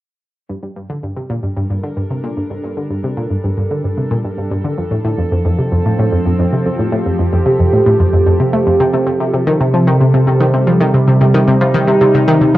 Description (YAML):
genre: ambient, sequencer-driven space music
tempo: 112 BPM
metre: 4/4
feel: straight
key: G minor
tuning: A4 = 441 Hz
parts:
  - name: evolving wavetable pad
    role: sustained chords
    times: 1.8-12.6 s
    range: C3 to Bb4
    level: -15 LUFS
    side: right 1 dB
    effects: chorus, built-in reverb, cassette tape, plate reverb
  - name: analog pluck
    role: riff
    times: 0.5-12.6 s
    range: F2 to A3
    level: -14 LUFS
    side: equal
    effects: chorus, cassette tape, ping-pong delay
room: wet small room reverb, RT60 0.5 s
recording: home recording on cassette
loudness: -12 LUFS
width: side -15 dB against mid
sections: 0.5-12.6 A section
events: fade-in on synth arpeggio sound 0.5-12.6; fade-in on ambient pad 0.5-12.6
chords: 0.5 Gm; 4.8 F; 9.1 Cm